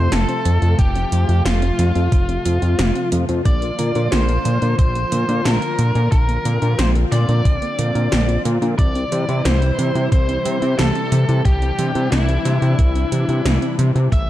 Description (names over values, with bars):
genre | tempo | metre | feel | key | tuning
synthwave | 90 BPM | 4/4 | straight | unclear | A4 = 441 Hz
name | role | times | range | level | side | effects
biting lead guitar | melody | 0.0-14.3 s | E4 to E5 | -24 LUFS | left 1 dB | overdrive, ping-pong delay
warm analog pad | sustained chords | 0.0-14.3 s | C3 to F4 | -26 LUFS | left 1 dB | chorus, sidechain pumping
soft round pluck | arpeggios | 0.0-14.3 s | D3 to F4 | -28 LUFS | right 3 dB | chorus, ping-pong delay
fat analog bass | bass | 0.0-14.3 s | F1 to C3 | -18 LUFS | equal | sidechain pumping
80s electronic pad drums | drums | 0.1-14.3 s | hi-hat, snare drum | -25 LUFS | equal | none
electronic kick drum | drums | 0.8-14.3 s | none | -16 LUFS | equal | none
room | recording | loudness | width
little or no reverb | dark, warm production | -15 LUFS | side -14 dB against mid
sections
0.0-14.3 A section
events
none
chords
0.0 F; 3.5 Bb; 8.8 C